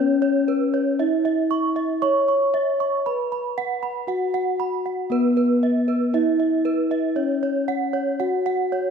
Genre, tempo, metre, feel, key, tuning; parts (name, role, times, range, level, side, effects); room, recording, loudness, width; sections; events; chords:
gamelan; 58 BPM; 4/4; straight; A4 = 441 Hz
gamelan-type bronze metallophone; melody; 0.0-8.9 s; B3-25c to C#5; -21 LUFS; left 1 dB
gamelan-type bronze metallophone; arpeggios; 0.0-8.9 s; B4-25c to C#6; -25 LUFS; right 5 dB
wet scoring stage reverb, RT60 1.9 s; minimal, uncompressed stereo recording; -19 LUFS; side -6 dB against mid
0.0-7.2 A section; 7.2-8.9 A section